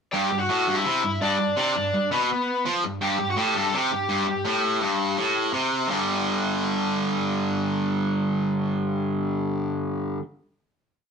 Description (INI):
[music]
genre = punk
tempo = 167 BPM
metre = 4/4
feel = straight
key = G major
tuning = A4 = 440 Hz
[part]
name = cranked stack guitar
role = melody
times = 0.1-5.5 s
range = B3 to A5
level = -25 LUFS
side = left 2 dB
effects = overdrive
[part]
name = distorted electric guitar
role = riff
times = 0.1-10.2 s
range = G2 to G3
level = -23 LUFS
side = equal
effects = overdrive
[sound]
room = moderate studio reverb, RT60 0.6 s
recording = rough rehearsal-room recording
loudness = -22 LUFS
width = side -6 dB against mid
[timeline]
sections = 0.1-5.9 riff; 5.9-8.8 final chord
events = none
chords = 0.1 G5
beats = | 0.13 0.49 0.86 1.22 | 1.58 1.94 2.30 2.66 | 3.02 3.38 3.74 4.10 | 4.46 4.82 5.18 5.54 | 5.89 6.25 6.61 6.97 | 7.33 7.69 8.05 8.41